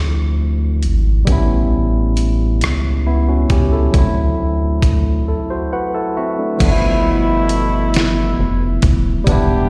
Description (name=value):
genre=slow six-eight R&B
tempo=45 BPM (dotted quarters)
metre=6/8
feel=straight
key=unclear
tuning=A4 = 440 Hz
part: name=barky tine electric piano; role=accompaniment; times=0.0-9.7 s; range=F3 to F#5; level=-22 LUFS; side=equal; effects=overdrive
part: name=rubbery square bass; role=bass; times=0.0-9.7 s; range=Eb1 to D2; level=-19 LUFS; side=equal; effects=none
part: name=dusty soul sampler-style drum kit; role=drums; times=0.8-9.5 s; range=crash cymbal, hi-hat, kick drum, rim click, snare drum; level=-19 LUFS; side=equal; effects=none
part: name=warm horn section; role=stabs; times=6.6-9.7 s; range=B2 to G4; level=-24 LUFS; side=equal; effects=slapback echo
room=little or no reverb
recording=live gig heard through the venue's PA, recital hall reverb, lossy compression artefacts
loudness=-16 LUFS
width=mono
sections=0.0-6.6 A section; 6.6-9.7 B section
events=break 5.3-6.6; tine electric piano fill 5.3-6.6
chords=0.0 Dm9; 1.3 A7; 3.9 D9; 6.6 G13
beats=| 1.27 2.61 | 3.94 5.27 | 6.61 7.94 | 9.27